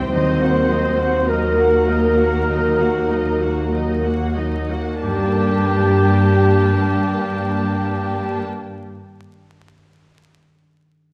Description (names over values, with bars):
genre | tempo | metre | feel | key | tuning
cinematic, emotional film score for orchestra | 45-53 BPM | 4/4 | rubato | unclear | A4 = 438 Hz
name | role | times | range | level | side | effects
muted symphonic violin section | melody | 0.0-8.4 s | Eb5 to A5 | -33 LUFS | equal | none
muted violin | melody | 0.0-8.4 s | G4 to C5 | -32 LUFS | equal | none
muted symphonic violin section | second line | 0.0-8.4 s | Bb4 to G5 | -30 LUFS | equal | none
muted symphonic viola section | accompaniment | 0.0-8.4 s | Gb3 to G4 | -29 LUFS | equal | none
dark French horn section | sustained chords | 0.0-8.4 s | Bb3 to G4 | -27 LUFS | equal | none
concert harp | arpeggios | 0.0-8.9 s | G2 to D5 | -27 LUFS | equal | none
muted symphonic cello section | bass | 0.0-8.4 s | G3 to C4 | -27 LUFS | equal | none
muted symphonic double bass section | bass | 0.0-8.4 s | C2 to G2 | -24 LUFS | equal | none
mellow clarinet | second line | 0.1-8.4 s | G4 to C5 | -28 LUFS | equal | none
mellow oboe | second line | 0.1-8.4 s | G4 to C5 | -28 LUFS | equal | none
room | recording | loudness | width
wet scoring stage reverb, RT60 1.9 s | vinyl crackle | -18 LUFS | mono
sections
0.0-5.0 A section; 5.0-10.2 B section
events
slowing down 0.0-5.0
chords
0.1 Ebm; 5.0 Gmadd9